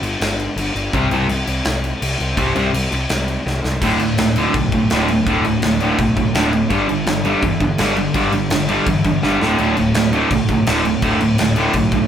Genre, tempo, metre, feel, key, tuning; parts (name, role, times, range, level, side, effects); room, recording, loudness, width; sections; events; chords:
punk rock; 166 BPM; 4/4; straight; A4 = 440 Hz
fuzz picked electric bass; bass; 0.0-12.0 s; D1 to E2; -22 LUFS; equal; overdrive
big rock drum kit; drums; 0.0-12.0 s; crash cymbal, kick drum, snare drum; -21 LUFS; left 1 dB
distorted electric guitar; riff; 0.9-12.1 s; D2 to C4; -20 LUFS; left 6 dB; distortion
distorted electric guitar; riff; 0.9-12.1 s; D2 to C4; -18 LUFS; right 5 dB; distortion
light reverb; band playing live in one room; -15 LUFS; side -9 dB against mid
0.0-3.8 A section; 3.8-12.1 B section
half time 0.0-3.8; drum fill 3.5-3.8, 9.2-9.6
0.0 G5; 0.9 C5; 3.8 D5; 6.7 G5; 9.4 D5